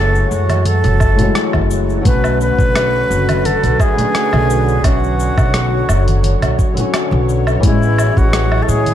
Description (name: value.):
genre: sunset chillout.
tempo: 86 BPM.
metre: 4/4.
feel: swing 53% on 16ths.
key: B dorian.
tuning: A4 = 440 Hz.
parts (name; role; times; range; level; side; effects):
bright baroque flute; melody; 0.0-8.9 s; E4 to B4; -19 LUFS; equal; ping-pong delay.
flamenco guitar; accompaniment; 0.0-8.9 s; D3 to C#5; -21 LUFS; moving between left 6 dB and right 4 dB; auto-pan, ping-pong delay.
lush unison pad; sustained chords; 0.0-8.9 s; D3 to C#5; -22 LUFS; left 1 dB; chorus.
upright bass; bass; 0.0-8.9 s; F#1 to A2; -16 LUFS; equal; none.
dusty soul sampler-style drum kit; drums; 0.1-8.9 s; hi-hat, rim click, shaker, woodblock; -22 LUFS; equal; none.
congas; percussion; 0.5-8.9 s; none; -23 LUFS; right 2 dB; none.
electronic kick drum; drums; 1.0-8.3 s; none; -15 LUFS; equal; none.
room: light reverb, small room ambience.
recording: dark, warm production.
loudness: -12 LUFS.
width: side -11 dB against mid.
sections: 0.0-8.9 A section.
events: none.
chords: 0.0 F#m7; 2.1 Bm7; 7.6 Amaj7.